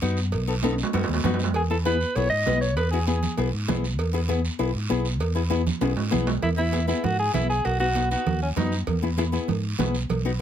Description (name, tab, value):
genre	latin, cumbia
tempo	196 BPM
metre	4/4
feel	straight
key	E major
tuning	A4 = 443 Hz
part	flamenco guitar	accompaniment	0.0-10.3 s	B3 to B4	-28 LUFS	left 6 dB	none
part	fingered electric bass	bass	0.0-10.4 s	B1 to G#2	-26 LUFS	equal	none
part	congas	percussion	0.0-10.2 s	none	-31 LUFS	right 3 dB	none
part	guiro	percussion	0.0-10.4 s	none	-38 LUFS	right 5 dB	none
part	cowbell and timbales	percussion	0.3-10.3 s	none	-31 LUFS	right 5 dB	none
part	clear alto saxophone	melody	1.6-3.4, 6.4-8.8 s	C#4 to D#5	-26 LUFS	equal	plate reverb
room	light reverb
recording	close, detailed microphones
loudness	-22 LUFS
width	side -9 dB against mid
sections	0.0-6.4 A section; 6.4-10.4 B section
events	drum fill 0.6-1.5, 5.8-6.4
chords	0.0 B; 1.5 E; 7.7 B; 8.9 E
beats	0.02 | 0.33 0.63 0.94 1.24 | 1.54 1.85 2.16 2.46 | 2.77 3.07 3.38 3.68 | 3.99 4.29 4.60 4.90 | 5.21 5.51 5.82 6.12 | 6.43 6.74 7.04 7.35 | 7.65 7.96 8.26 8.57 | 8.88 9.18 9.49 9.79 | 10.10 10.40